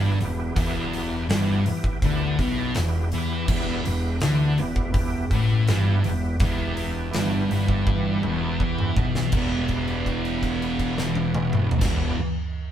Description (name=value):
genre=blues rock power trio and southern rock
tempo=82 BPM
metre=4/4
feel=straight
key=E minor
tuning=A4 = 442 Hz
part: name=overdriven tonewheel organ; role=sustained chords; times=0.0-12.1 s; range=B3 to G4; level=-34 LUFS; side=right 1 dB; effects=slow rotary speaker, chorus vibrato
part: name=thick fuzz guitar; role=riff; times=0.0-12.2 s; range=E2 to E3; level=-24 LUFS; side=left 1 dB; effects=distortion
part: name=fuzz fingered electric bass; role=bass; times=0.0-12.1 s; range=E1 to E2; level=-30 LUFS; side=equal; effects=overdrive
part: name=huge arena drum kit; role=drums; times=0.2-12.0 s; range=crash cymbal, hi-hat, kick drum, snare drum, toms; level=-26 LUFS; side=right 1 dB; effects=none
room=moderate studio reverb, RT60 0.8 s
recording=band playing live in one room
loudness=-21 LUFS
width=side -10 dB against mid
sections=0.0-9.3 A section; 9.3-12.3 B section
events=drum fill 7.9-9.3; held note 9.3-11.8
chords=0.0 Em